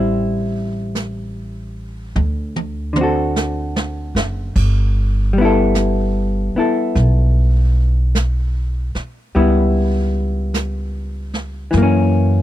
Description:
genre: jazz ballad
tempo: 50 BPM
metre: 4/4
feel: swing 66% on 8ths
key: D major, G major from 4.6 s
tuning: A4 = 440 Hz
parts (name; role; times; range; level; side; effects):
- vintage hollow-body jazz guitar; accompaniment; 0.0-12.4 s; D3 to A4; -18 LUFS; left 2 dB; none
- upright bass; bass; 0.0-12.4 s; F#1 to F#2; -18 LUFS; equal; none
- jazz brush drum kit; drums; 1.0-12.4 s; brushed snare drum, crash cymbal, hi-hat, kick drum, snare drum, toms; -24 LUFS; right 2 dB; none
room: studio reverb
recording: dry, close 1970s-style studio recording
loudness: -15 LUFS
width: side -13 dB against mid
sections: 0.0-4.6 A section; 4.6-12.4 B section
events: drum fill 2.1-4.6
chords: 0.0 Am7; 2.1 D7; 4.6 G69; 9.3 C#m7b5; 11.7 F#7

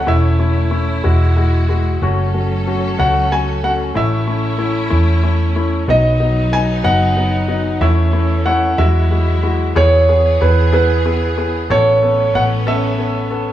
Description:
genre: six-eight pop ballad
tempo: 62 BPM (dotted quarters)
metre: 6/8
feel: straight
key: A major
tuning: A4 = 442 Hz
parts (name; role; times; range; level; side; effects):
- warm concert grand piano; melody; 0.0-13.5 s; B4 to G#5; -18 LUFS; right 2 dB; tape echo
- clear studio string section; sustained chords; 0.0-13.5 s; E3 to A4; -25 LUFS; right 3 dB; none
- vintage muted fingered electric bass; bass; 0.0-13.5 s; E1 to E2; -16 LUFS; equal; none
- warm grand piano; accompaniment; 0.1-13.5 s; F#3 to A4; -20 LUFS; left 4 dB; none
room: light reverb, small room ambience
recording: small room reverb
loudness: -13 LUFS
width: side -12 dB against mid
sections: 0.0-9.8 A section; 9.8-13.5 B section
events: none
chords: 0.1 A/E; 1.0 Eadd9; 2.0 F#m; 4.0 A; 5.9 B; 7.8 A/E; 8.8 Eadd9; 9.8 E; 11.7 Aadd9

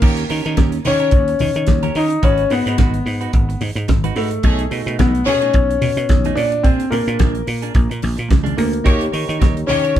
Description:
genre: disco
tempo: 109 BPM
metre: 4/4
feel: swing 56% on 16ths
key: unclear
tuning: A4 = 440 Hz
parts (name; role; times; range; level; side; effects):
- warm grand piano; melody; 0.0-10.0 s; A3 to D#4; -19 LUFS; left 3 dB; none
- bright symphonic violin section; second line; 0.0-1.1, 4.4-5.5, 8.9-9.9 s; A3 to C#5; -26 LUFS; equal; none
- clean electric guitar; accompaniment; 0.0-10.0 s; A3 to C#5; -27 LUFS; right 7 dB; none
- tine electric piano; accompaniment; 0.0, 8.8-10.0 s; D#3 to C#5; -26 LUFS; left 3 dB; none
- dry thumbed slap bass; bass; 0.0-10.0 s; G#1 to D#3; -21 LUFS; right 1 dB; none
- damped 70s drum kit; drums; 0.0-10.0 s; crash cymbal, hi-hat, kick drum, snare drum; -17 LUFS; equal; none
- congas; percussion; 0.0-9.8 s; none; -26 LUFS; left 4 dB; none
room: light reverb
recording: band playing live in one room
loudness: -14 LUFS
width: side -11 dB against mid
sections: 0.0-10.0 A section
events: none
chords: 0.0 D#7; 2.2 G#m7; 4.4 B13; 6.4 A#7; 8.9 D#7

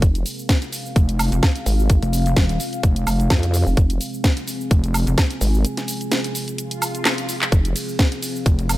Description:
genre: bass house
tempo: 128 BPM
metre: 4/4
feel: swing 55% on 16ths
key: F minor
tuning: A4 = 439 Hz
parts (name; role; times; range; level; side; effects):
- deep dark ambient pad; sustained chords; 0.0-8.8 s; C4 to Ab5; -28 LUFS; equal; chorus, built-in reverb, sidechain pumping
- vowel-sweep wobble bass; bass; 0.0-7.7 s; F1 to F2; -19 LUFS; equal; chorus, overdrive, sidechain pumping
- electronic kick drum; drums; 0.0-8.6 s; none; -16 LUFS; equal; none
- garage drum kit; drums; 0.0-8.8 s; cabasa, handclaps, hi-hat, ride cymbal, snare drum, woodblock; -24 LUFS; equal; none
- pulsing pluck wobble bass; bass; 1.0-5.2, 8.5-8.8 s; Eb1 to F1; -19 LUFS; equal; chorus, sidechain pumping
- swell; sound effects; 6.7-7.5 s; none; -32 LUFS; left 1 dB; none
room: digital ambience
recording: none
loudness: -17 LUFS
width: side -16 dB against mid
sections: 0.0-8.8 A section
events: break 5.6-7.5; swell 6.7-7.5; drum fill 7.1-7.5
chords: 0.0 Fm

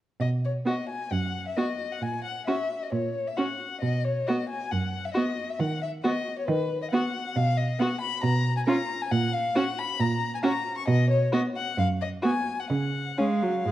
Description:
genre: quick classical-period movement for string quartet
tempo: 134 BPM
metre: 4/4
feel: rubato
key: B major, F# major from 7.4 s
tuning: A4 = 440 Hz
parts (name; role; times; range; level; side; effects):
- warm violin; melody; 0.2-13.7 s; B4 to C#6; -30 LUFS; left 4 dB; none
- rich cello; bass; 0.2-13.7 s; F#2 to D#3; -27 LUFS; right 2 dB; none
- warm violin; second line; 0.7-13.3 s; C#4 to F#4; -32 LUFS; left 1 dB; none
- clear viola; accompaniment; 0.7-13.7 s; F#3 to C#4; -28 LUFS; right 2 dB; none
room: wet recital hall reverb, RT60 1.5 s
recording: worn, warbling old tape, cassette tape, warbly pitch drift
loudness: -25 LUFS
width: side -14 dB against mid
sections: 0.2-13.7 A section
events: none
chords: 0.2 B5; 2.0 F#/A#; 3.8 B5; 5.6 B/D# (rootless); 7.4 B; 8.2 N.C.; 9.1 F#/A#; 10.9 B5; 12.7 C#

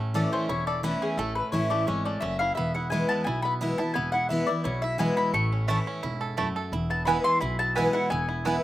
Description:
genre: bluegrass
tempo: 173 BPM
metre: 4/4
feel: straight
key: A major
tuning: A4 = 438 Hz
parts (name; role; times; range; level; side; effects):
- bluegrass banjo; melody; 0.0-8.6 s; E3 to A4; -34 LUFS; right 5 dB; slapback echo
- picked steel-string acoustic guitar; accompaniment; 0.0-8.6 s; E2 to E4; -29 LUFS; left 1 dB; slapback echo
- upright bass; bass; 0.0-8.6 s; E1 to B1; -32 LUFS; equal; none
- mandolin; melody; 0.2-8.6 s; G#4 to C#6; -28 LUFS; left 2 dB; slapback echo
- mandolin; stabs; 5.7-8.6 s; A3 to A5; -26 LUFS; right 5 dB; none
room: little or no reverb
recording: recorded outdoors, with no room sound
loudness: -24 LUFS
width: side -14 dB against mid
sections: 0.0-8.6 A section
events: none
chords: 0.0 A; 2.6 E; 5.3 A; 6.7 E

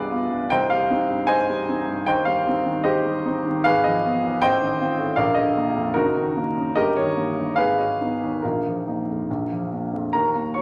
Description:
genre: classical, romantic character piece for solo piano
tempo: 68-81 BPM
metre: 2/4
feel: rubato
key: C minor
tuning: A4 = 440 Hz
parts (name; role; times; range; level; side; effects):
- warm upright piano; solo; 0.0-10.6 s; Gb1 to Db6; -22 LUFS; equal; none
room: wet recital hall reverb, RT60 1.5 s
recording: vinyl crackle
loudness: -22 LUFS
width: mono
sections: 0.0-10.1 A section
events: none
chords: 0.0 G7b9/C; 0.5 Cm; 2.1 Cm/Eb; 3.6 Fm7b5/Ab; 4.4 F7/A; 5.2 Bb; 5.9 Ebm/Gb; 6.8 Eb7/G; 7.6 Abm7; 8.4 Bbsus4; 9.3 Bb

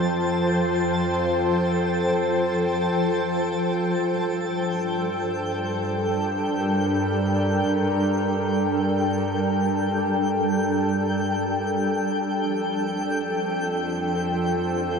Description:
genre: ambient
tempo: free time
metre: none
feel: none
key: unclear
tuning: A4 = 440 Hz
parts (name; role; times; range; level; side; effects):
- shimmering ambient pad; sustained chords; 0.0-15.0 s; F3 to G5; -22 LUFS; equal; chorus, built-in reverb
- warm studio cello section; bass; 0.0-15.0 s; F2 to G2; -30 LUFS; right 1 dB; tube saturation
- twinkling granular texture; texture; 0.0-15.0 s; G5 to A5; -33 LUFS; left 1 dB; built-in reverb
room: wet lush hall reverb, RT60 2.9 s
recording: dark, warm production, nothing above 10.4 kHz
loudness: -21 LUFS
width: side -5 dB against mid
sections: 0.0-15.0 A section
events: none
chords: 0.0 Fadd9; 4.2 Gmadd9; 12.5 Fadd9

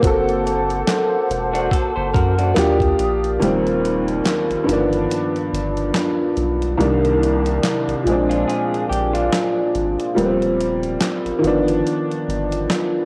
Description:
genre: lo-fi hip hop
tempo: 71 BPM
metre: 4/4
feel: swing 57% on 16ths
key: Eb major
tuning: A4 = 440 Hz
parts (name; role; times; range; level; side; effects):
- clear upright piano; accompaniment; 0.0-13.1 s; C2 to A4; -21 LUFS; equal; cassette tape
- mellow hollow flute section; sustained chords; 0.0-3.4 s; D4 to Eb6; -28 LUFS; equal; cassette tape
- soft dub sub bass; bass; 0.0-12.7 s; Eb1 to F#2; -26 LUFS; equal; tube saturation
- dusty soul sampler-style drum kit; drums; 0.0-12.9 s; handclaps, hi-hat, kick drum, snare drum; -26 LUFS; equal; none
- electric guitar through a small old amp; second line; 1.5-2.8, 8.3-10.1 s; D4 to C5; -27 LUFS; equal; cassette tape, tape echo
room: moderate spring reverb, RT60 2.3 s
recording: home recording on cassette, lossy compression artefacts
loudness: -19 LUFS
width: mono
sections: 0.0-3.4 A section; 3.4-13.1 B section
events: kick muted 3.4-13.1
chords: 0.0 D7b13/F#; 2.6 Ebmaj9; 3.4 Eb6; 4.7 G7b13; 6.8 Cm9; 8.1 Bb9; 10.2 Eb6; 11.4 G7b13

